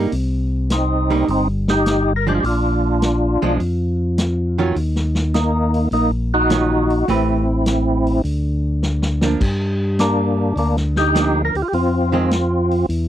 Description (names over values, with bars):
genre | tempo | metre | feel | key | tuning
soul jazz organ trio | 103 BPM | 4/4 | swing 69% on 8ths | unclear | A4 = 440 Hz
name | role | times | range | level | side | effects
archtop guitar, miked and amplified | accompaniment | 0.0-12.3 s | Eb3 to B4 | -21 LUFS | right 4 dB | none
tonewheel organ | bass | 0.0-13.1 s | G1 to G2 | -19 LUFS | equal | overdrive, slow rotary speaker
vintage drum kit | drums | 0.1-13.1 s | crash cymbal, hi-hat, kick drum, snare drum | -23 LUFS | equal | none
percussive tonewheel organ | melody | 0.7-12.9 s | Bb3 to Bb4 | -18 LUFS | equal | slow rotary speaker, overdrive, chorus vibrato
room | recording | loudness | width
little or no reverb | dry, close 1970s-style studio recording | -16 LUFS | side -11 dB against mid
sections
0.1-13.1 A section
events
drum fill 8.8-9.4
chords
0.1 Cm; 2.4 Bb; 4.8 Ebm9; 7.1 Am9; 8.2 Dm; 9.4 Gm7; 11.7 Fm7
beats
| 0.12 0.70 1.28 1.86 | 2.44 3.02 3.60 4.18 | 4.76 5.34 5.92 6.51 | 7.09 7.67 8.25 8.83 | 9.41 9.99 10.57 11.15 | 11.74 12.32 12.90